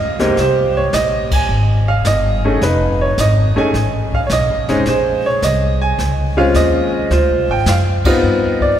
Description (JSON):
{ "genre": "jazz piano trio", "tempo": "107 BPM", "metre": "4/4", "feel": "swing 69% on 8ths", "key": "unclear", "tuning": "A4 = 440 Hz", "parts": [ { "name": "bright upright piano", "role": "melody", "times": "0.0-8.8 s", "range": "Ab2 to Ab5", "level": "-15 LUFS", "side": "right 1 dB", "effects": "none" }, { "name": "upright bass", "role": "bass", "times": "0.0-8.8 s", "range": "F1 to G2", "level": "-17 LUFS", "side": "equal", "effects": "none" }, { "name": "jazz brush drum kit", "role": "drums", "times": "0.2-8.8 s", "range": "brushed snare drum, crash cymbal, hi-hat, kick drum, snare drum", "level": "-24 LUFS", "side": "left 1 dB", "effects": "none" } ], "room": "wet cathedral reverb, RT60 5.1 s", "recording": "recorded in a church or concert hall", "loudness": "-13 LUFS", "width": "side -10 dB against mid", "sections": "0.4-8.8 A section", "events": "band accent 1.2, 7.9", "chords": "0.4 Abmaj7; 2.6 F7alt; 4.9 Bbm7; 7.1 Dm7b5; 8.2 G7b13", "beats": "| 0.37 0.94 1.50 2.06 | 2.62 3.18 3.74 4.30 | 4.86 5.42 5.98 6.54 | 7.10 7.66 8.22 8.78" }